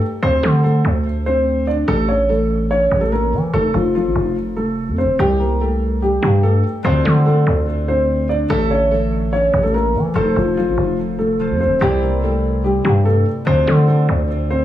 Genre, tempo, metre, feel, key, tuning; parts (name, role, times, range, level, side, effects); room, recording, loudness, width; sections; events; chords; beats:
hip hop; 145 BPM; 4/4; half-time; D minor; A4 = 444 Hz
dark concert grand piano; melody; 0.2-14.6 s; F3 to D5; -17 LUFS; equal; tape echo
growling 808-style bass; bass; 0.2-14.6 s; F1 to E3; -18 LUFS; equal
concert harp; accompaniment; 6.8-14.6 s; C3 to E5; -22 LUFS; left 1 dB; tape echo
light reverb, small room ambience; echo-heavy mix, studio reverb; -14 LUFS; side -12 dB against mid
0.0-14.6 A section
0.2 D5; 1.9 A; 3.5 F; 5.2 C5; 6.8 Dm7; 8.5 A; 10.2 F; 11.8 Cadd9; 13.5 Dm7
| 0.23 0.64 1.05 1.47 | 1.88 2.29 2.71 3.12 | 3.54 3.95 4.36 4.78 | 5.19 5.61 6.02 6.43 | 6.85 7.26 7.67 8.09 | 8.50 8.92 9.33 9.74 | 10.16 10.57 10.98 11.40 | 11.81 12.23 12.64 13.05 | 13.47 13.88 14.29